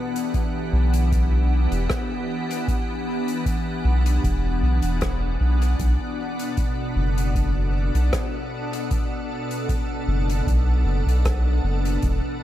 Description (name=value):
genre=ambient dub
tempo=77 BPM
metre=4/4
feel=swing 53% on 16ths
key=unclear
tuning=A4 = 441 Hz
part: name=soft additive organ-like pad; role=sustained chords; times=0.0-12.4 s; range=B2 to F#5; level=-26 LUFS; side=left 1 dB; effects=ensemble chorus, built-in reverb
part: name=soft-mallet drum kit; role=drums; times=0.2-12.2 s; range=hi-hat, rim click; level=-34 LUFS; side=left 1 dB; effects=dub echo
part: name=electronic kick drum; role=drums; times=0.3-12.2 s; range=none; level=-26 LUFS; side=equal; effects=none
part: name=soft dub sub bass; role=bass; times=0.7-12.2 s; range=E1 to B1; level=-20 LUFS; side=equal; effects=tube saturation
room=little or no reverb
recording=echo-heavy mix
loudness=-20 LUFS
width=side -13 dB against mid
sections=0.0-12.4 A section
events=none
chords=0.0 Em7; 5.8 Bm7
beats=0.34 1.12 1.90 | 2.68 3.46 4.24 5.02 | 5.79 6.58 7.35 8.13 | 8.91 9.69 10.47 11.25 | 12.03